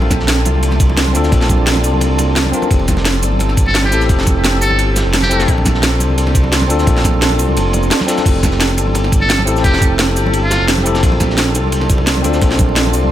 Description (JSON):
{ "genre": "liquid drum and bass", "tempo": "173 BPM", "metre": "4/4", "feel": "straight", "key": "unclear", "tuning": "A4 = 443 Hz", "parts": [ { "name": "bell-like tine electric piano", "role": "accompaniment", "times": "0.0-13.1 s", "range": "C4 to Bb4", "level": "-19 LUFS", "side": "left 2 dB", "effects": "auto-pan, tape echo" }, { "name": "ethereal airy pad", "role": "sustained chords", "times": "0.0-13.1 s", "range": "Bb3 to E6", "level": "-23 LUFS", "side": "right 2 dB", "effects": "ensemble chorus, built-in reverb, sidechain pumping" }, { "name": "smooth synth bass", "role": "bass", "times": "0.0-13.1 s", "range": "F1 to D2", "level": "-16 LUFS", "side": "equal", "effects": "tube saturation" }, { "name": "congas", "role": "percussion", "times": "0.0-13.1 s", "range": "none", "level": "-25 LUFS", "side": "right 2 dB", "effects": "none" }, { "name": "crunchy breakbeat drum kit", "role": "drums", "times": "0.1-13.0 s", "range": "ride cymbal, snare drum", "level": "-25 LUFS", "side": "equal", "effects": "high-pass filter on cymbals, high-pass filter on snare, high-pass filter on room" }, { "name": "drum and bass drum kit", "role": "drums", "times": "0.1-13.0 s", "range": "crash cymbal, hi-hat, shaker, snare drum", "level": "-18 LUFS", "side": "right 1 dB", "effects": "none" }, { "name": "electronic kick drum", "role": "drums", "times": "0.1-12.7 s", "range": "none", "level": "-14 LUFS", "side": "equal", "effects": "none" }, { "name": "trumpet with metal mute", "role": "melody", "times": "3.7-5.5, 9.2-10.7 s", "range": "F4 to A4", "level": "-22 LUFS", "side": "equal", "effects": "dub echo" } ], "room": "small room ambience", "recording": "none", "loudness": "-11 LUFS", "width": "side -12 dB against mid", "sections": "0.0-13.1 A section", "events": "none", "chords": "0.0 Bbmaj9; 2.7 Fmaj9; 5.5 Bbmaj9; 8.3 Fmaj9; 11.0 Bbmaj9" }